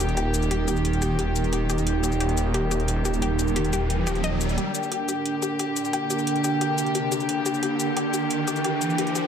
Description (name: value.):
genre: dark technical drum and bass.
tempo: 177 BPM.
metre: 4/4.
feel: straight.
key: G minor.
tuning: A4 = 438 Hz.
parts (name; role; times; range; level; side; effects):
warm studio string section; sustained chords; 0.0-9.3 s; D3 to G4; -29 LUFS; equal; none.
analog pluck; arpeggios; 0.0-9.2 s; G4 to Eb5; -32 LUFS; left 4 dB; chorus, dub echo.
snarling distorted saw bass; bass; 0.0-4.6 s; Eb1; -25 LUFS; equal; distortion.
electronic hi-hat and shaker; drums; 0.0-9.2 s; none; -32 LUFS; left 2 dB; none.
warbly tape-like pad; texture; 0.0-9.3 s; D4 to G5; -28 LUFS; right 2 dB; chorus, built-in reverb.
riser; sound effects; 2.9-9.3 s; none; -32 LUFS; right 1 dB; none.
room: light reverb, digital ambience.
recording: high-pass filter.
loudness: -22 LUFS.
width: side -8 dB against mid.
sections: 0.0-4.6 A section; 4.6-9.3 B section.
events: filter sweep on synth arpeggio sound 0.0-4.6; riser 2.9-4.6, 4.6-9.3; build-up 4.6-9.3.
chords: 0.0 Eb; 4.6 Gm.